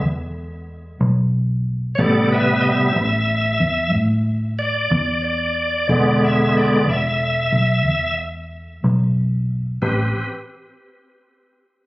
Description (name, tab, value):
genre	slow blues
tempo	61 BPM (dotted quarters)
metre	12/8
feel	straight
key	A minor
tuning	A4 = 440 Hz
part	vintage muted fingered electric bass	bass	0.0-10.1 s	E1 to A2	-20 LUFS	equal	none
part	bright tonewheel organ	sustained chords	2.0-10.3 s	C3 to E5	-18 LUFS	equal	slow rotary speaker
room	light reverb, digital ambience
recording	recorded on a phone in the room, studio reverb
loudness	-16 LUFS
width	side -19 dB against mid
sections	0.0-9.8 A section; 9.8-11.9 B section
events	tonewheel organ solo 0.0-9.8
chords	0.0 E5; 2.0 Am9; 5.9 E7; 9.8 Am9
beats	0.03 1.01 | 1.98 2.96 3.94 4.92 | 5.89 6.87 7.85 8.83 | 9.81